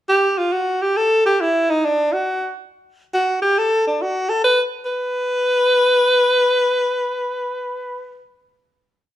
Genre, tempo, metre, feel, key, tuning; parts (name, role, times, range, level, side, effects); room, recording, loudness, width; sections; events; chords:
jazz; 138 BPM; 3/4; swing 66% on 8ths; A4 = 442 Hz
clear alto saxophone; solo; 0.1-8.2 s; D4 to B4; -16 LUFS; equal
wet large studio reverb, RT60 1.1 s; band playing live in one room; -16 LUFS; side -12 dB against mid
0.0-4.9 A section; 4.9-7.5 final note